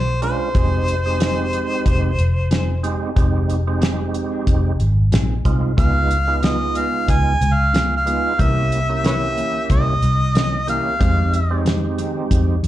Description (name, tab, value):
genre	straight-eighth soul blues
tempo	92 BPM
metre	4/4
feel	swing 56% on 16ths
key	F minor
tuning	A4 = 436 Hz
part	warm harmonica	melody	0.0-11.6 s	B4 to Ab5	-21 LUFS	equal	overdrive, slapback echo
part	vintage muted fingered electric bass	bass	0.0-12.7 s	F1 to F2	-19 LUFS	equal	none
part	percussive tonewheel organ	accompaniment	0.2-12.6 s	G#3 to G4	-24 LUFS	right 6 dB	slow rotary speaker, overdrive, chorus vibrato, slapback echo
part	damped 70s drum kit	drums	0.2-12.7 s	hi-hat, kick drum, snare drum	-19 LUFS	equal	none
part	mellow electric guitar	stabs	0.5-12.2 s	F2 to Ab4	-29 LUFS	left 5 dB	slapback echo, tape echo
room	light reverb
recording	live gig heard through the venue's PA, club reverb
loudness	-16 LUFS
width	side -14 dB against mid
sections	0.0-12.7 A section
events	none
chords	0.0 Bdim7; 0.6 Fm7; 5.8 Db7; 8.4 C7b9; 11.0 Fm7